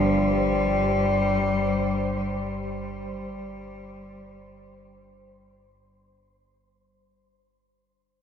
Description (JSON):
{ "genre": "dark ambient drone", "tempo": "free time", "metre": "none", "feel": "none", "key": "unclear", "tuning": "A4 = 437 Hz", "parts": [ { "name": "clear cello", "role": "melody", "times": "0.0-5.6 s", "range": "G3", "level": "-25 LUFS", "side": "left 2 dB", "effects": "shimmer reverb, ping-pong delay" }, { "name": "analog drone", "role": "drone", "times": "0.0-7.0 s", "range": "G1 to G2", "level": "-28 LUFS", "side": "equal", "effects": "chorus" }, { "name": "wind-like tuned noise texture", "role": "texture", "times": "0.0-6.9 s", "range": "C5", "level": "-33 LUFS", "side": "equal", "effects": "built-in reverb, shimmer reverb" } ], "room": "wet cathedral reverb, RT60 5.5 s", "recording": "dreamy mix soaked in reverb", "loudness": "-22 LUFS", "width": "side -8 dB against mid", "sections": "0.0-6.9 A section", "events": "fade-out 0.0-6.9", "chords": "0.0 Gsus4" }